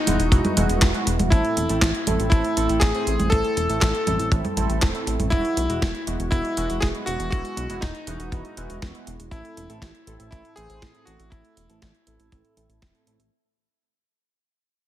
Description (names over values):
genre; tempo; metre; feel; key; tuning
italo disco; 120 BPM; 4/4; straight; unclear; A4 = 440 Hz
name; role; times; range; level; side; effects
bright electric grand piano; melody; 0.0-13.0 s; D#4 to A4; -26 LUFS; left 1 dB; ping-pong delay
chorused polysynth; stabs; 0.1-13.2 s; A2 to C5; -29 LUFS; right 3 dB; cassette tape, ping-pong delay
chorused synth bass; bass; 0.1-13.3 s; E1 to B1; -27 LUFS; equal; none
clean 12-bit digital drum machine; drums; 0.1-13.3 s; congas, handclaps, hi-hat, snare drum; -26 LUFS; equal; gated reverb
kick drum; drums; 0.3-12.9 s; none; -20 LUFS; equal; none
room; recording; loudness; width
light reverb; none; -20 LUFS; side -12 dB against mid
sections
0.0-13.3 A section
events
fade-out 0.0-13.3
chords
0.0 Eadd9; 1.3 Am; 5.3 Eadd9; 9.3 Am